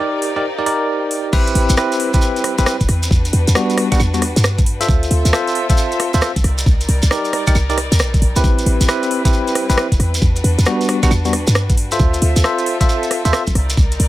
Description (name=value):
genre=UK garage, two-step garage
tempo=135 BPM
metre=4/4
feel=swing 65% on 16ths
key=A minor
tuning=A4 = 440 Hz
part: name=warm studio violin section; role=sustained chords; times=0.0-14.1 s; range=G3 to E5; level=-27 LUFS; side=left 2 dB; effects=sidechain pumping
part: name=bell-like tine electric piano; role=stabs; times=0.0-13.4 s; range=G3 to E5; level=-19 LUFS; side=equal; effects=medium stereo tremolo, digital delay
part: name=warbly tape-like pad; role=texture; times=0.0-1.3 s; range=G4 to C6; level=-31 LUFS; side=equal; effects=none
part: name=garage drum kit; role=drums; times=0.2-14.1 s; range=claves, crash cymbal, hi-hat, rim click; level=-22 LUFS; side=right 1 dB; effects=none
part: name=short 808-style bass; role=bass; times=1.3-14.1 s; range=E1 to G2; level=-16 LUFS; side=equal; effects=none
part: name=electronic kick drum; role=drums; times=1.3-13.9 s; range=none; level=-15 LUFS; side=equal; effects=none
part: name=shekere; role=percussion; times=1.3-14.0 s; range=none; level=-26 LUFS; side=right 2 dB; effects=none
room=light reverb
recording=none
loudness=-13 LUFS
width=side -15 dB against mid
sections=0.0-1.3 A section; 1.3-14.1 B section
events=drop 1.3-14.1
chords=0.0 Cm9; 1.3 Am9; 3.1 Em9; 4.9 Dm9; 6.4 Cm9; 8.4 Am9; 10.2 Em9; 12.0 Dm9; 13.6 Cm9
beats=0.00 0.44 0.89 | 1.33 1.77 2.22 2.66 | 3.11 3.55 4.00 4.44 | 4.89 5.33 5.78 6.22 | 6.66 7.11 7.55 8.00 | 8.44 8.89 9.33 9.78 | 10.22 10.66 11.11 11.55 | 12.00 12.44 12.89 13.33 | 13.78